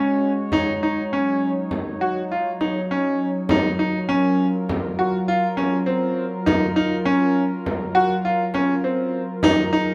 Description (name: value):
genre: contemporary instrumental, chamber music in an uneven meter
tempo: 101 BPM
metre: 5/4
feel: straight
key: Gb lydian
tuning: A4 = 440 Hz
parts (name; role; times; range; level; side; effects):
- warbly tape-like pad; sustained chords; 0.0-9.9 s; Gb3 to Db5; -28 LUFS; equal; chorus, built-in reverb
- bright concert grand piano; arpeggios; 0.0-9.9 s; C4 to Gb4; -23 LUFS; equal; none
- frame drum; percussion; 0.5-9.7 s; none; -29 LUFS; equal; none
room: moderate recital hall reverb, RT60 1.4 s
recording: none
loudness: -21 LUFS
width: mono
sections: 0.0-9.9 A section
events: none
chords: 0.0 Ab7sus4; 0.5 Ebm7; 3.5 Gbmaj7; 9.4 Ab7sus4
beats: | 0.53 1.12 1.72 2.31 2.90 | 3.50 4.09 4.69 5.28 5.87 | 6.47 7.06 7.65 8.24 8.84 | 9.43